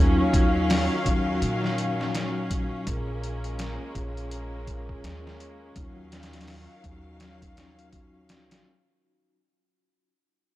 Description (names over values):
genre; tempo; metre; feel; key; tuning
trip hop; 83 BPM; 4/4; swing 60% on 16ths; unclear; A4 = 440 Hz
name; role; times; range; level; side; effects
vibraphone with soft mallets; accompaniment; 0.0-8.7 s; Gb3 to Db5; -29 LUFS; left 1 dB; harmonic tremolo, tape echo
rich studio string section; sustained chords; 0.0-8.6 s; Eb3 to F5; -31 LUFS; left 1 dB; none
upright bass; bass; 0.0-8.6 s; Bb1 to Bb2; -31 LUFS; equal; tube saturation
trip hop sampler-style drum kit; drums; 0.3-8.6 s; hi-hat, kick drum, snare drum; -27 LUFS; equal; none
room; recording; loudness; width
small room ambience; none; -24 LUFS; side -15 dB against mid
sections
0.0-8.6 A section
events
fade-out 0.0-8.6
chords
0.0 Ebm9; 2.9 Bbm7; 5.8 Ebm9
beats
0.69 1.42 2.14 | 2.86 3.58 4.31 5.03 | 5.75 6.47 7.20 7.92